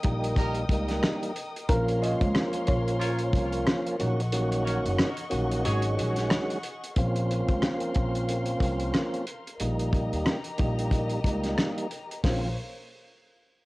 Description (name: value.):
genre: hip hop, boom-bap hip-hop.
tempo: 91 BPM.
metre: 4/4.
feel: swing 58% on 16ths.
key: Bb minor.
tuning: A4 = 440 Hz.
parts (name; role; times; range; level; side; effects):
tonewheel organ; accompaniment; 0.0-12.5 s; Db3 to Gb4; -30 LUFS; right 1 dB; overdrive, fast rotary speaker, cassette tape, high-pass filter, low-pass filter.
warm studio string section; sustained chords; 0.0-12.5 s; Bb3 to Eb6; -38 LUFS; left 2 dB; high-pass filter, low-pass filter, cassette tape.
upright bass; bass; 0.0-12.5 s; Gb1 to Eb2; -30 LUFS; equal; none.
warm soul drum kit; drums; 0.0-12.4 s; hi-hat, kick drum, rim click, snare drum; -28 LUFS; equal; cassette tape.
warm horn section; stabs; 0.4-5.9 s; Db4 to Db5; -38 LUFS; right 1 dB; high-pass filter, low-pass filter, cassette tape, tape echo.
dark upright piano; melody; 1.7-3.8 s; Bb4 to Eb5; -32 LUFS; equal; high-pass filter, low-pass filter, cassette tape.
room: little or no reverb.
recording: home recording on cassette.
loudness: -25 LUFS.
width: side -20 dB against mid.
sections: 0.0-7.0 A section; 7.0-12.2 B section; 12.2-13.7 C section.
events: kick muted 4.3-7.0.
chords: 0.0 Eb/Bb; 1.7 Bbmadd9; 4.0 Gb6/Bb; 5.6 Ab7sus4; 7.0 Bbmadd9; 9.6 Eb/Bb; 12.2 Bbmadd9.